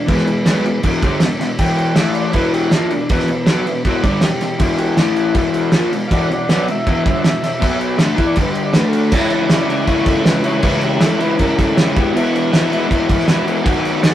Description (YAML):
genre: garage rock duo or trio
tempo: 159 BPM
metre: 4/4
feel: straight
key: E major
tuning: A4 = 440 Hz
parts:
  - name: overdriven combo organ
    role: melody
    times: 0.0-14.1 s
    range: G#3 to G5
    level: -22 LUFS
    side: equal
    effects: none
  - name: crunchy overdriven guitar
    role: riff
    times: 0.0-14.1 s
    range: E2 to F#4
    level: -17 LUFS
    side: left 1 dB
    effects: none
  - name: cloth-damped thuddy drum kit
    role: drums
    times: 0.1-14.1 s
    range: crash cymbal, kick drum, snare drum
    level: -17 LUFS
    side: right 1 dB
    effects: none
room: moderate small room reverb, RT60 0.5 s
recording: rough rehearsal-room recording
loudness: -13 LUFS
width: side -12 dB against mid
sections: 0.0-9.1 A section; 9.1-14.1 B section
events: transistor combo organ solo 0.0-9.1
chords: 0.0 E; 2.0 A5; 2.3 E5; 5.0 A5; 5.4 E5; 7.6 B5; 8.0 E5; 8.4 G5; 8.7 D5; 9.1 C#m; 12.0 E